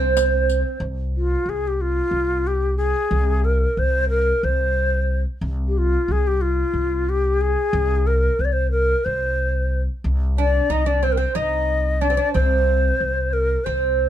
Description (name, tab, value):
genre	Turkish makam ensemble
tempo	182 BPM (eighths)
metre	7/8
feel	straight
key	C makam ussak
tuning	A4 = 440 Hz
part	breathy bright ney	melody	0.0-14.1 s	F4 to Eb5	-21 LUFS	left 2 dB	none
part	oud	second line	0.0-0.8, 10.4-14.1 s	C4 to Eb4	-24 LUFS	right 11 dB	none
part	upright bass	bass	0.0-14.1 s	C2	-21 LUFS	equal	none
part	riq	percussion	0.2-0.6 s	none	-32 LUFS	left 6 dB	none
room	light reverb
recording	dark, warm production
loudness	-18 LUFS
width	side -11 dB against mid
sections	0.8-14.1 A section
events	none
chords	none